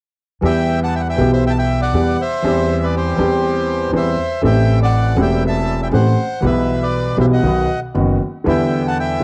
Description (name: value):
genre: tango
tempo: 119 BPM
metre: 4/4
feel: rubato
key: E minor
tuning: A4 = 442 Hz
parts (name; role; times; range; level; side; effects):
- warm grand piano; accompaniment; 0.4-9.2 s; E1 to G4; -19 LUFS; equal; cassette tape
- upright bass; bass; 0.4-9.2 s; E1 to E2; -23 LUFS; equal; none
- bandoneon; melody; 0.5-9.2 s; G4 to A5; -23 LUFS; equal; cassette tape
room: small room ambience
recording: home recording on cassette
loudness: -17 LUFS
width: mono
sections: 0.4-9.2 A section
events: none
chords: 0.4 Em; 2.5 C/E; 4.4 Am7; 6.4 Em/B; 7.4 B; 8.5 Em7